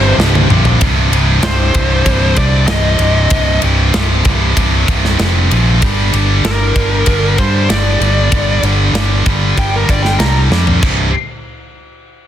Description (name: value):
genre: heavy metal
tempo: 96 BPM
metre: 4/4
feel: straight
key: unclear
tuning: A4 = 440 Hz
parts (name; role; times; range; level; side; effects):
- high-gain lead guitar; melody; 0.0-10.4 s; Bb4 to Bb5; -18 LUFS; left 1 dB; distortion, ping-pong delay
- biting overdriven guitar; riff; 0.0-0.8 s; C2 to C3; -21 LUFS; equal; none
- heavy high-gain guitar; riff; 0.0-11.1 s; C2 to G3; -19 LUFS; left 13 dB; distortion
- heavy high-gain guitar; riff; 0.0-11.1 s; C2 to G3; -18 LUFS; right 14 dB; distortion
- fingered electric bass; bass; 0.0-11.1 s; C1 to G2; -14 LUFS; equal; none
- tight metal drum kit; drums; 0.2-11.0 s; crash cymbal, kick drum, ride cymbal, snare drum, toms; -17 LUFS; equal; none
room: small room ambience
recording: dense, heavily limited modern master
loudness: -10 LUFS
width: side -10 dB against mid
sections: 0.8-10.8 A section; 10.8-12.3 B section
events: drum fill 0.2-0.8, 10.5-10.8; lead electric guitar solo 0.8-10.8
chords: 0.0 C5; 5.8 Gm; 10.8 C5